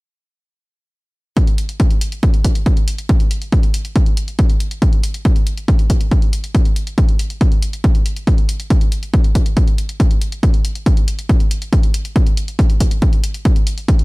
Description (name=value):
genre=uplifting trance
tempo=139 BPM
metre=4/4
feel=straight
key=none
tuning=none
part: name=electronic hi-hat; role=drums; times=1.4-14.0 s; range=none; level=-29 LUFS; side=left 1 dB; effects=none
part: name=electronic kick drum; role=drums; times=1.4-14.0 s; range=none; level=-13 LUFS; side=equal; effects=none
room=little or no reverb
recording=none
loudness=-13 LUFS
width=side -23 dB against mid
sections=1.4-14.0 A section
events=none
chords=none